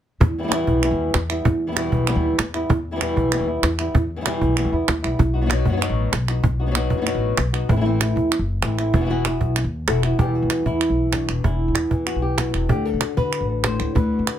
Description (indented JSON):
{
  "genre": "flamenco",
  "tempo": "192 BPM",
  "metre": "4/4",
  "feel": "straight",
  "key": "E harmonic minor, E minor from 10.2 s",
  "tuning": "A4 = 439 Hz",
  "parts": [
    { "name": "flamenco guitar", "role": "melody", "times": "0.2-14.4 s", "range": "E2 to C5", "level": "-22 LUFS", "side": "left 1 dB", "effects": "none" },
    { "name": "upright bass", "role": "bass", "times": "0.2-14.4 s", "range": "E1 to D3", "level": "-23 LUFS", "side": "left 1 dB", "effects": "none" },
    { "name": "cajon", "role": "percussion", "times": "0.2-14.3 s", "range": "none", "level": "-22 LUFS", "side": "right 2 dB", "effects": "none" },
    { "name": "palmas hand claps", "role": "percussion", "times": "0.5-14.4 s", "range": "none", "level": "-26 LUFS", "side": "right 8 dB", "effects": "none" }
  ],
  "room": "light reverb",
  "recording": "close, detailed microphones",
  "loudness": "-18 LUFS",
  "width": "side -10 dB against mid",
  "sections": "0.2-10.2 A section; 10.2-14.4 B section",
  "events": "none",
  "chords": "0.2 Em; 5.2 B; 7.7 Am; 8.9 Esus2; 10.2 Em; 12.7 D"
}